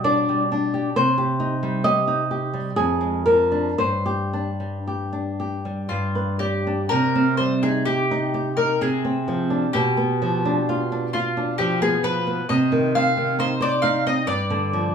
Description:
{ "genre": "romantic duo for mandolin and classical guitar", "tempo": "55-68 BPM", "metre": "3/4", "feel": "rubato", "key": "C minor", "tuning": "A4 = 440 Hz", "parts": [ { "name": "nylon-string guitar", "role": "accompaniment", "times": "0.0-14.9 s", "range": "F2 to Eb5", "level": "-21 LUFS", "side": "equal", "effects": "none" }, { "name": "mandolin", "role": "melody", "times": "5.9-14.9 s", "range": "F4 to F5", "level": "-23 LUFS", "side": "left 2 dB", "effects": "none" } ], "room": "moderate studio reverb, RT60 0.8 s", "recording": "band playing live in one room, small room ambience", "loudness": "-19 LUFS", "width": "side -7 dB against mid", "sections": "0.0-6.9 A section; 6.9-14.9 B section", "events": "none", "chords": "0.0 G/B; 1.0 Cm; 2.8 Ddim/F; 3.8 Gsus4; 5.9 G; 6.9 Cm; 8.8 Dm7b5/C; 9.7 G7/B; 12.5 Cm; 14.3 G7(no3)" }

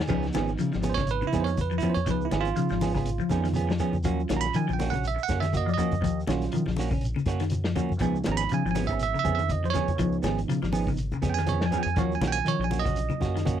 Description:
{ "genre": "afrobeat", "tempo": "121 BPM", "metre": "4/4", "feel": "swing 56% on 16ths", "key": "Db mixolydian", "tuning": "A4 = 438 Hz", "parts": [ { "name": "bell-like tine electric piano", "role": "accompaniment", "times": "0.0-13.6 s", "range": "F3 to Cb6", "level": "-30 LUFS", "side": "right 10 dB", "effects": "none" }, { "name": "semi-hollow electric guitar", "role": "arpeggios", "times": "0.0-13.5 s", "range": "Db3 to F3", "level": "-31 LUFS", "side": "left 7 dB", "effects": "phaser" }, { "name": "vintage drum kit", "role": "drums", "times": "0.0-13.6 s", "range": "crash cymbal, hi-hat, kick drum, snare drum", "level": "-34 LUFS", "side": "equal", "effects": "none" }, { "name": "semi-hollow electric guitar", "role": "stabs", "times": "0.1-13.6 s", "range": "F3 to Ab4", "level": "-31 LUFS", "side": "right 8 dB", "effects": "warbly pitch drift" }, { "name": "deep dub fingered electric bass", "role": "bass", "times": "0.1-13.6 s", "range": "Ab1 to Eb3", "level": "-30 LUFS", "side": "equal", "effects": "none" }, { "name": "congas", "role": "percussion", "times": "0.1-13.6 s", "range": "none", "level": "-34 LUFS", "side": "left 3 dB", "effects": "none" }, { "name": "shekere", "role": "percussion", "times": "0.1-13.6 s", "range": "none", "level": "-38 LUFS", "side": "right 2 dB", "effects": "none" } ], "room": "little or no reverb", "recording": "dry, close 1970s-style studio recording", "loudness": "-24 LUFS", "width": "side -10 dB against mid", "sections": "0.1-13.6 A section", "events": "tine electric piano solo 0.1-13.6", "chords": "0.1 Db7; 4.1 Ebm7; 8.0 Db7; 12.0 Ebm7" }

